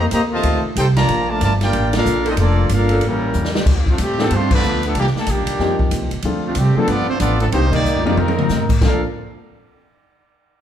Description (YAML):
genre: jazz, big band swing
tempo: 186 BPM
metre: 4/4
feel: swing 62% on 8ths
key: Bb major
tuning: A4 = 440 Hz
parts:
  - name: warm trumpet section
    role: melody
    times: 0.0-9.0 s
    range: G3 to Bb5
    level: -21 LUFS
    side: equal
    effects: none
  - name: mellow trombone section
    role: second line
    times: 0.0-9.0 s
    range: A2 to A4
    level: -23 LUFS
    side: equal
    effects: none
  - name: mellow saxophone section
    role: sustained chords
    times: 0.0-4.0 s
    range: F3 to A4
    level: -28 LUFS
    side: equal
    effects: none
  - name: upright bass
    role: bass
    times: 0.0-9.0 s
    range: F1 to A2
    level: -19 LUFS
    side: equal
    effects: none
  - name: swinging big-band drum kit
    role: drums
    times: 0.1-8.9 s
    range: crash cymbal, hi-hat, kick drum, ride cymbal, snare drum, toms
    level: -22 LUFS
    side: left 1 dB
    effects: none
  - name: warm grand piano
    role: accompaniment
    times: 4.2-9.0 s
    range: Eb3 to A4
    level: -23 LUFS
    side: left 2 dB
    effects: none
room: moderate large studio reverb, RT60 1.3 s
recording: heard from further back in the room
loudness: -15 LUFS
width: side -10 dB against mid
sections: 0.0-3.7 A section; 3.7-8.8 B section; 8.8-10.1 C section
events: band accent 1.9, 4.5, 7.7; drum fill 3.3-3.7, 7.9-8.5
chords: 0.0 F7; 1.1 Bbmaj7; 3.0 A7b9; 3.7 Dm7; 5.0 Cm9; 5.6 F7sus4; 6.2 Dm7; 6.9 G9; 7.5 Cm9; 8.2 F7sus4; 8.8 Bbmaj7